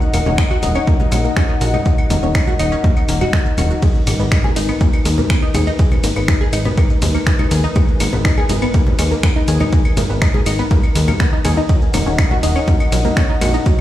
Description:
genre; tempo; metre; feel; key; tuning
melodic techno; 122 BPM; 4/4; straight; G# minor; A4 = 440 Hz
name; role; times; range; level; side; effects
dark analog pad; sustained chords; 0.0-13.8 s; G#3 to F#5; -23 LUFS; left 1 dB; chorus, vintage 12-bit sampler grit, sidechain pumping
deep house drum kit; drums; 0.0-13.8 s; claves, congas, finger snaps, hi-hat, ride cymbal, shaker; -22 LUFS; left 1 dB; none
tight sequenced synth; arpeggios; 0.1-13.8 s; F#3 to G#5; -23 LUFS; left 1 dB; chorus, sidechain pumping, ping-pong delay
plucky analog bass; bass; 0.1-13.6 s; D#1 to D#2; -18 LUFS; equal; sidechain pumping
electronic kick drum; drums; 0.4-13.8 s; none; -15 LUFS; equal; none
room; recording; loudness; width
digital ambience; played on a big sound system in a bare room, stone room reverb; -13 LUFS; side -13 dB against mid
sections
0.0-13.8 A section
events
none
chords
0.0 D#m7; 3.8 G#madd9; 11.7 D#m7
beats
0.38 0.87 1.36 | 1.86 2.35 2.84 3.33 | 3.82 4.32 4.81 5.30 | 5.79 6.28 6.78 7.27 | 7.76 8.25 8.74 9.23 | 9.73 10.22 10.71 11.20 | 11.69 12.19 12.68 13.17 | 13.66

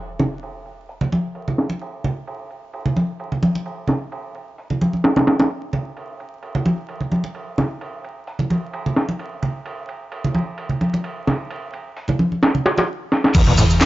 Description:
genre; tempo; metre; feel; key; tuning
breakbeat, breaks; 130 BPM; 4/4; swing 54% on 16ths; unclear; A4 = 440 Hz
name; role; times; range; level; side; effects
impact; sound effects; 0.0-0.4, 13.5-13.9 s; none; -26 LUFS; equal; none
breakbeat sampler-style drum kit; drums; 0.2-13.9 s; crash cymbal, hi-hat, kick drum, ride cymbal, snare drum; -22 LUFS; equal; low-pass filter on cymbals, low-pass filter on kick, low-pass filter on snare, low-pass filter on hats
congas; percussion; 0.2-12.9 s; none; -20 LUFS; right 1 dB; none
overdriven acid bass; riff; 13.3-13.6 s; E2 to B2; -18 LUFS; equal; distortion, lush chorus
hollow-body short-scale fingered electric bass; bass; 13.3-13.9 s; E2; -16 LUFS; equal; none
electronic shaker and handclaps; drums; 13.3-13.9 s; none; -22 LUFS; equal; none
room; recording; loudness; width
digital ambience; vinyl crackle, nothing above 7.6 kHz; -19 LUFS; side -16 dB against mid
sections
0.0-13.3 A section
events
impact 0.0-0.4, 13.3-13.9; stop 12.9-13.3; drum fill 13.1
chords
none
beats
| 0.43 0.89 1.35 1.81 | 2.27 2.73 3.20 3.66 | 4.12 4.58 5.04 5.50 | 5.96 6.43 6.89 7.35 | 7.81 8.27 8.73 9.20 | 9.66 10.12 10.58 11.04 | 11.50 11.96 12.43 12.89 | 13.35 13.81

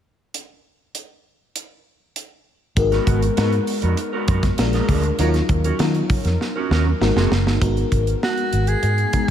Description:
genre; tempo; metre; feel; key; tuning
polished 1980s jazz-funk pop; 99 BPM; 4/4; straight; G# dorian; A4 = 439 Hz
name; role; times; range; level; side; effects
modern studio drum kit; drums; 0.3-9.3 s; hi-hat, kick drum, snare drum; -23 LUFS; right 1 dB; none
FM electric piano with soft pad layer; accompaniment; 2.8-9.3 s; F#3 to A#4; -23 LUFS; left 4 dB; phaser, lush chorus
electric guitar through a small old amp; riff; 2.8-7.5 s; B3 to B4; -28 LUFS; right 6 dB; analog chorus
vintage muted fingered electric bass; bass; 2.8-9.3 s; F#1 to D#3; -20 LUFS; equal; none
bright soprano saxophone; melody; 8.2-9.3 s; F#4 to G#4; -22 LUFS; right 2 dB; none
room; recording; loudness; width
light reverb; none; -17 LUFS; side -10 dB against mid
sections
0.3-2.8 A section; 2.8-7.6 B section; 7.6-9.3 C section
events
drum fill 6.4-7.6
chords
0.3 N.C.; 2.8 G#m9; 4.6 A#7; 5.2 D#m7; 7.0 G#7; 7.6 G#m9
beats
| 0.34 0.95 1.55 2.16 | 2.77 3.37 3.98 4.58 | 5.19 5.80 6.40 7.01 | 7.62 8.22 8.83

